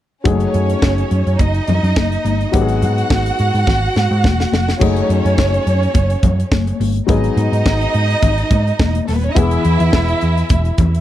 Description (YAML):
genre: disco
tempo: 105 BPM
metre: 4/4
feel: straight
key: F# dorian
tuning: A4 = 442 Hz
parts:
  - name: warm studio violin section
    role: second line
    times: 0.2-11.0 s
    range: A3 to F#5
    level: -20 LUFS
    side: right 2 dB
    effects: none
  - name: dark baby grand piano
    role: accompaniment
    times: 0.2-11.0 s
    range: E3 to G#4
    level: -21 LUFS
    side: left 6 dB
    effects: none
  - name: hollow-body short-scale picked electric bass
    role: bass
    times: 0.3-11.0 s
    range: D#1 to G#2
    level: -16 LUFS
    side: right 1 dB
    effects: none
  - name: tight funk drum kit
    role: drums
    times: 0.3-11.0 s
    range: crash cymbal, hi-hat, kick drum, snare drum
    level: -17 LUFS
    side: right 1 dB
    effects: none
  - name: congas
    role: percussion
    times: 0.3-10.9 s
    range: none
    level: -24 LUFS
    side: left 9 dB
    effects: none
room: small room ambience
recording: dry, close 1970s-style studio recording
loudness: -13 LUFS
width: side -12 dB against mid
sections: 0.3-4.8 A section; 4.8-11.0 B section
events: drum fill 3.7-4.8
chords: 0.3 F#m69; 2.5 G#m7; 4.8 F#m69; 7.1 G#m7; 9.4 E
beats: | 0.25 0.82 1.39 1.96 | 2.53 3.10 3.67 4.24 | 4.81 5.38 5.95 6.52 | 7.09 7.66 8.23 8.79 | 9.37 9.93 10.50